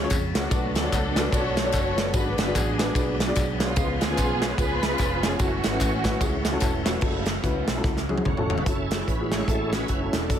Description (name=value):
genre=uptempo gospel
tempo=147 BPM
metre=4/4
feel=swing 60% on 8ths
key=F# minor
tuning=A4 = 440 Hz
part: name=warm studio string section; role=melody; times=0.0-6.6 s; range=G#3 to C#5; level=-28 LUFS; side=equal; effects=none
part: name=warm upright piano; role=accompaniment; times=0.0-10.4 s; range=G#2 to A5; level=-30 LUFS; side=left 3 dB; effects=none
part: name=bright tonewheel organ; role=sustained chords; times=0.0-10.4 s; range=C#3 to C#5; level=-32 LUFS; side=right 3 dB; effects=fast rotary speaker, overdrive, chorus vibrato
part: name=fingered electric bass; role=bass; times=0.0-10.4 s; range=E1 to E#2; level=-30 LUFS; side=equal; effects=none
part: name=modern studio drum kit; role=drums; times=0.1-10.4 s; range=crash cymbal, hi-hat, kick drum, ride cymbal, snare drum, toms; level=-25 LUFS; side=equal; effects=none
part: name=handclaps and tambourine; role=percussion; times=0.1-6.9 s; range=none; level=-37 LUFS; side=left 2 dB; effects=none
part: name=clear studio string section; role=sustained chords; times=7.0-8.6 s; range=F#3 to E4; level=-40 LUFS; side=right 1 dB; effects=none
room=light reverb, small room ambience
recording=none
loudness=-22 LUFS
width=side -9 dB against mid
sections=0.0-7.0 A section; 7.0-8.7 B section; 8.7-10.4 C section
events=upright piano fill 6.2-7.0; drum fill 7.8-8.7; tonewheel organ solo 8.7-10.4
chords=0.0 C#; 0.5 Bm7; 2.1 G#m7b5; 3.8 C#7; 5.4 F#m7